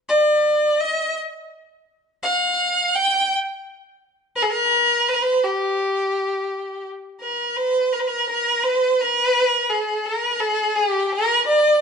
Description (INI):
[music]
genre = arabic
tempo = 85 BPM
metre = 3/4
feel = straight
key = G maqam huzam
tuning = A4 = 439 Hz
[part]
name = rich violin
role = solo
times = 0.1-11.8 s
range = G4 to G5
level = -18 LUFS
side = equal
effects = none
[sound]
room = moderate stone room reverb, RT60 1.4 s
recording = band playing live in one room, nothing above 10.7 kHz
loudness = -18 LUFS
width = side -6 dB against mid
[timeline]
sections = 0.0-7.6 A section; 7.6-11.8 B section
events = none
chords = none